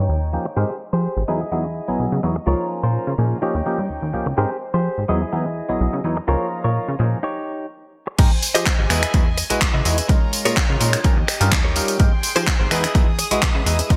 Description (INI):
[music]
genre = filtered disco house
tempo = 126 BPM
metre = 4/4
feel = straight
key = unclear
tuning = A4 = 440 Hz
[part]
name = warm studio violin section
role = sustained chords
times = 0.0-14.0 s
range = Db4 to D#6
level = -34 LUFS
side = equal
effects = sidechain pumping, low-pass filter
[part]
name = direct-recorded clean electric guitar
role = riff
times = 0.0-13.9 s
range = Eb4 to D#5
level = -28 LUFS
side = equal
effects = sidechain pumping, low-pass filter
[part]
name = plucky analog bass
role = bass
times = 0.0-14.0 s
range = Ab1 to F3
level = -24 LUFS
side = equal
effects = sidechain pumping, low-pass filter
[part]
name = clav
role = accompaniment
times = 0.3-14.0 s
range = F3 to D#5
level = -27 LUFS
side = equal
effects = phaser, sidechain pumping, low-pass filter
[part]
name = electronic kick drum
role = drums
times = 8.2-14.0 s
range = none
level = -20 LUFS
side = equal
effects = overdrive
[part]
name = house drum kit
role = drums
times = 8.2-14.0 s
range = crash cymbal, finger snaps, handclaps, hi-hat, tambourine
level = -24 LUFS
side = equal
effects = sidechain pumping on hats, sidechain pumping on cymbals, sidechain pumping on perc, gated reverb
[sound]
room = light reverb, digital ambience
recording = bright 1980s-style digital production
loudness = -20 LUFS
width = mono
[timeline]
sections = 0.0-8.2 A section; 8.2-14.0 B section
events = filter sweep 0.0-8.2; break 7.2-8.2; drop 8.2-14.0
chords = 0.0 Eb7; 0.6 Abmaj7; 1.3 Emaj7; 2.5 Db6; 3.4 Eb7; 4.4 Abmaj7; 5.1 Emaj7; 6.3 Db6; 7.2 Eb7; 8.2 Abmaj7; 8.9 Emaj7; 10.1 Db6; 11.0 Eb7; 12.0 Abmaj7; 12.7 Emaj7